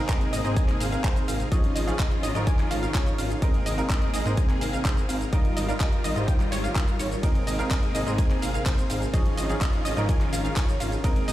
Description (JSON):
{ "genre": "EDM, festival progressive house", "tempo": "126 BPM", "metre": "4/4", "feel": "straight", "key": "Ab major", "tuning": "A4 = 440 Hz", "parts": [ { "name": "bright baby grand piano", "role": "accompaniment", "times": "0.0-11.3 s", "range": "F3 to C5", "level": "-34 LUFS", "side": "right 1 dB", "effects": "sidechain pumping, tape echo" }, { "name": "rich studio string section", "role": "sustained chords", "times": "0.0-11.3 s", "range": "C3 to Ab4", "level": "-36 LUFS", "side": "left 2 dB", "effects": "sidechain pumping" }, { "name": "wide unison pluck", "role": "arpeggios", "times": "0.0-11.3 s", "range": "C5 to Ab5", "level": "-34 LUFS", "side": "equal", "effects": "sidechain pumping, tape echo" }, { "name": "dense compressed supersaw", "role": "riff", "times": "0.0-11.3 s", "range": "G3 to Ab5", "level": "-32 LUFS", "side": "equal", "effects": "sidechain pumping, tape echo" }, { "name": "electronic kick drum", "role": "drums", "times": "0.1-11.1 s", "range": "none", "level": "-23 LUFS", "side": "equal", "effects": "overdrive" }, { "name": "pop drum kit", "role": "drums", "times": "0.1-11.3 s", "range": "handclaps, hi-hat, ride cymbal, shaker", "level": "-34 LUFS", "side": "equal", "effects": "none" }, { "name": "wide detuned saw bass", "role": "bass", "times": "0.3-11.3 s", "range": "Ab1 to Ab2", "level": "-29 LUFS", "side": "equal", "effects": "chorus, sidechain pumping" } ], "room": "little or no reverb", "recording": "played on a big sound system in a bare room, large studio reverb", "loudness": "-22 LUFS", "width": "side -14 dB against mid", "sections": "0.0-11.3 A section", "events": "none", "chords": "0.0 Abadd9; 1.5 Dbadd9/Ab; 3.4 Abadd9; 5.3 Ebadd9/Ab; 7.2 Abadd9; 9.1 Dbadd9/Ab" }